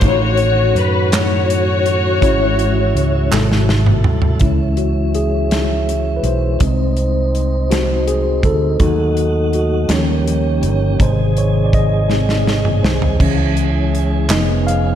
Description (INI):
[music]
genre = slow gospel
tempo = 55 BPM (dotted quarters)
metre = 6/8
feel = straight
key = C# harmonic minor from 4.4 s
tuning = A4 = 440 Hz
[part]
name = warm studio string section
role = melody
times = 0.0-3.7 s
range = F#4 to C#5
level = -18 LUFS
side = left 3 dB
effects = analog delay
[part]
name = mellow tine electric piano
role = accompaniment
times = 0.0-15.0 s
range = G#2 to E#5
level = -19 LUFS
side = left 3 dB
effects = medium stereo tremolo
[part]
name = mellow tonewheel organ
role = sustained chords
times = 0.0-15.0 s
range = B#2 to A4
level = -25 LUFS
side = right 4 dB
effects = slow rotary speaker
[part]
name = fingered electric bass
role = bass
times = 0.0-15.0 s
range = E#1 to F#2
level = -17 LUFS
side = right 1 dB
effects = none
[part]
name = modern studio drum kit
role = drums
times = 0.0-14.8 s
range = crash cymbal, hi-hat, kick drum, snare drum, toms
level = -19 LUFS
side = right 1 dB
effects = none
[part]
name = group handclap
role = percussion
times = 1.1-3.7, 14.3-14.6 s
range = none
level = -24 LUFS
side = right 4 dB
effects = none
[part]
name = mellow French horn section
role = sustained chords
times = 4.4-15.0 s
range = E#3 to E5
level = -25 LUFS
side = right 1 dB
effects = none
[sound]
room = moderate lush hall reverb, RT60 2.1 s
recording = dreamy mix soaked in reverb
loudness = -13 LUFS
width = side -10 dB against mid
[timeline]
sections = 0.0-4.4 A section; 4.4-15.0 B section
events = drum fill 3.3-4.4, 12.1-13.2; tine electric piano solo 4.4-15.0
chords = 0.0 D#m7b5/A; 2.2 C#m/G#; 3.3 G#7b9; 4.4 C#m; 6.6 G#/B#; 8.8 D#dim; 9.9 D#7; 11.0 G#; 13.2 C#m; 14.3 C#7/E#